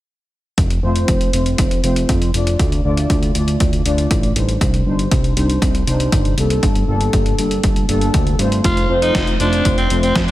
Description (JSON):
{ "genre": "italo disco", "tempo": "119 BPM", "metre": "4/4", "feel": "straight", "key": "F mixolydian", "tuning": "A4 = 437 Hz", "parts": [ { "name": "fat analog bass", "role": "bass", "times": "0.6-10.3 s", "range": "F1 to G2", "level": "-19 LUFS", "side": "equal", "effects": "none" }, { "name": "dusty soul sampler-style drum kit", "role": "drums", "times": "0.6-10.3 s", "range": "hi-hat, snare drum", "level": "-25 LUFS", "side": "left 1 dB", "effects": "none" }, { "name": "electronic kick drum", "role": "drums", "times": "0.6-10.3 s", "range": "none", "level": "-19 LUFS", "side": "equal", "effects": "overdrive" }, { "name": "analog synth brass", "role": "stabs", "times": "0.8-10.3 s", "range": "G3 to D5", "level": "-20 LUFS", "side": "left 1 dB", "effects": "chorus, tape echo" }, { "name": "raspy alto saxophone", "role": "melody", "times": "8.6-10.3 s", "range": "C4 to F4", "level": "-19 LUFS", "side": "equal", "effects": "tape echo" } ], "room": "light reverb, digital ambience", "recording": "none", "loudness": "-14 LUFS", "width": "side -15 dB against mid", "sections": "0.6-10.3 A section", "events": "none", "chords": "0.6 F; 2.6 Dm; 4.6 Cmadd9; 6.6 Gmadd9; 8.6 F" }